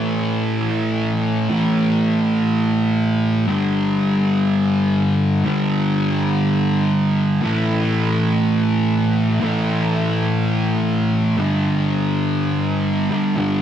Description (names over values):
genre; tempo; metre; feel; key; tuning
rock; free time; none; none; unclear; A4 = 442 Hz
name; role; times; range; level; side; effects
thick fuzz guitar; solo; 0.0-13.6 s; G2 to A3; -16 LUFS; equal; distortion, lush chorus
room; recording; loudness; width
light reverb; dark, warm production; -16 LUFS; side -9 dB against mid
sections
0.0-11.4 A section; 11.4-13.6 A section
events
none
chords
0.0 A5; 3.5 G5; 7.4 A5; 11.4 G5